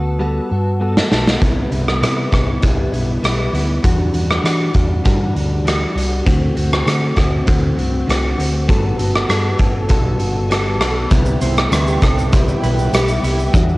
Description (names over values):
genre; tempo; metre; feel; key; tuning
indie pop, bedroom pop; 99 BPM; 4/4; straight; C lydian; A4 = 439 Hz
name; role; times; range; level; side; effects
direct-recorded clean electric guitar; accompaniment; 0.0-13.8 s; C3 to A4; -21 LUFS; left 1 dB; ensemble chorus, vibrato effect, cassette tape
hollow-body short-scale fingered electric bass; bass; 0.0-13.8 s; G1 to E3; -19 LUFS; equal; none
raw garage drum kit; drums; 1.0-13.8 s; hi-hat, kick drum, rim click, shaker, snare drum; -17 LUFS; equal; cassette tape
phased analog pad; sustained chords; 11.1-13.8 s; F#4 to D6; -27 LUFS; right 2 dB; phaser, chorus, cassette tape
electric guitar through a small old amp; second line; 11.4-13.4 s; G3 to C5; -25 LUFS; right 3 dB; wide subtle chorus, cassette tape, analog delay
tambourine; percussion; 11.7-13.1 s; none; -36 LUFS; right 5 dB; none
room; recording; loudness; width
small room reverb; home recording on cassette; -14 LUFS; side -20 dB against mid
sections
0.0-11.1 A section; 11.1-13.8 B section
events
drum fill 0.2-1.4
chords
0.0 Gmaj9; 1.4 Cmaj7; 3.8 Em9; 6.3 D7; 8.7 Gmaj9; 11.1 Cmaj7